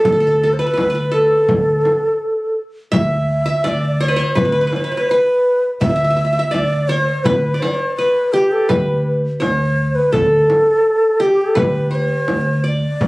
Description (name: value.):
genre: Arabic maqam ensemble.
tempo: 83 BPM.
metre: 4/4.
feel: straight.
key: D maqam rast.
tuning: A4 = 440 Hz.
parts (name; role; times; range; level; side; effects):
breathy reedy ney; melody; 0.0-13.1 s; G4 to E5; -16 LUFS; equal; none.
qanun; second line; 0.0-13.1 s; G4 to E5; -22 LUFS; equal; none.
frame drum; percussion; 0.0-13.1 s; none; -20 LUFS; left 1 dB; none.
upright bass; bass; 0.1-13.1 s; D2; -20 LUFS; equal; none.
room: light reverb.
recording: recorded on a phone in the room, club reverb, compression.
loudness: -14 LUFS.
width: side -21 dB against mid.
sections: 0.0-13.1 A section.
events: none.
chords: none.